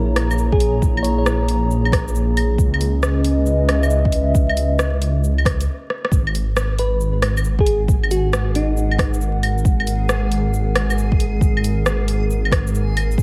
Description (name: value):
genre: future garage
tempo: 136 BPM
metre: 4/4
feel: swing 66% on 16ths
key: G# minor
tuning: A4 = 440 Hz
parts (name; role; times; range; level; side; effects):
- dark analog pad; sustained chords; 0.0-13.2 s; G#3 to A#5; -26 LUFS; equal; subtle chorus, sidechain pumping
- dark detuned saw bass; bass; 0.0-13.2 s; G#1 to C#2; -22 LUFS; equal; sidechain pumping
- garage drum kit; drums; 0.2-13.2 s; claves, hi-hat, rim click, shaker; -26 LUFS; equal; studio reverb
- bell-like FM electric piano; melody; 0.5-1.2, 6.8-9.2 s; D#4 to C#5; -26 LUFS; equal; chorus, tape echo
- electronic kick drum; drums; 0.5-13.2 s; none; -20 LUFS; equal; studio reverb
- backwards swelling texture; texture; 6.9-13.2 s; G#4; -36 LUFS; equal; built-in reverb
room: moderate plate reverb, RT60 1.8 s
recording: dreamy mix soaked in reverb, vinyl crackle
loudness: -18 LUFS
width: mono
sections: 0.0-6.1 A section; 6.1-13.2 A section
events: break 5.7-6.1; drum fill 5.9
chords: 0.0 A#m7b5; 2.6 C#m7; 6.1 G#5